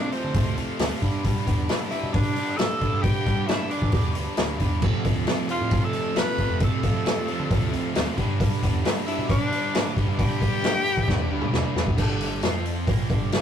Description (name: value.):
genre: classic rock.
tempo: 134 BPM.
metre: 4/4.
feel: straight.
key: G mixolydian.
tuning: A4 = 439 Hz.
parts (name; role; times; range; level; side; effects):
raspy tenor saxophone; melody; 0.0-11.5 s; C4 to B4; -28 LUFS; left 2 dB; none.
octave-fuzz lead guitar; second line; 0.0-11.5 s; C5 to B5; -38 LUFS; right 4 dB; distortion, analog delay.
distorted electric guitar; riff; 0.0-13.4 s; F2 to F4; -33 LUFS; right 5 dB; distortion.
sludgy distorted guitar; riff; 0.0-13.4 s; G2 to B4; -32 LUFS; left 3 dB; overdrive.
vintage drum kit; drums; 0.1-13.4 s; crash cymbal, hi-hat, kick drum, snare drum, toms; -24 LUFS; equal; none.
deep dub picked electric bass; bass; 0.2-13.4 s; G1 to G3; -30 LUFS; equal; none.
sludgy distorted guitar; riff; 4.8-11.8 s; F2 to G3; -33 LUFS; right 2 dB; overdrive.
room: light reverb.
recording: rough rehearsal-room recording, warm saturation.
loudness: -21 LUFS.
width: side -9 dB against mid.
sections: 0.0-12.0 A section; 12.0-13.4 B section.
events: drum fill 11.1-12.0.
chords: 0.0 F; 1.0 G; 4.8 F; 8.2 G; 12.0 G5; 12.4 F5; 12.9 G5.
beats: 0.35 0.80 | 1.25 1.69 2.14 2.59 | 3.04 3.48 3.93 4.38 | 4.83 5.27 5.72 6.17 | 6.61 7.06 7.51 7.95 | 8.40 8.85 9.29 9.74 | 10.19 10.64 11.08 11.53 | 11.98 12.43 12.87 13.32.